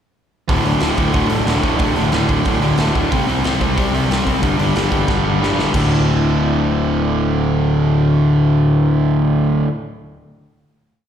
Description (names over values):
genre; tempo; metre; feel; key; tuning
punk rock; 183 BPM; 4/4; straight; unclear; A4 = 441 Hz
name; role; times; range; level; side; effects
distorted electric guitar; riff; 0.5-9.7 s; D2 to C4; -19 LUFS; right 7 dB; overdrive
overdriven semi-hollow guitar; riff; 0.5-9.7 s; D2 to C4; -18 LUFS; left 5 dB; none
fuzz picked electric bass; bass; 0.5-9.6 s; D1 to C2; -21 LUFS; equal; overdrive
raw garage drum kit; drums; 0.5-5.8 s; crash cymbal, hi-hat, kick drum, snare drum; -22 LUFS; equal; none
room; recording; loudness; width
little or no reverb; live gig heard through the venue's PA, recital hall reverb; -14 LUFS; side -9 dB against mid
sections
0.5-5.7 verse; 5.7-8.4 final chord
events
drum fill 5.1-5.7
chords
0.5 D5; 3.1 C5; 4.4 G5; 5.7 D5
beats
| 0.49 0.82 1.15 1.48 | 1.80 2.13 2.46 2.79 | 3.11 3.44 3.77 4.10 | 4.42 4.75 5.08 5.41 | 5.74 6.06 6.39 6.72 | 7.05 7.38 7.71 8.04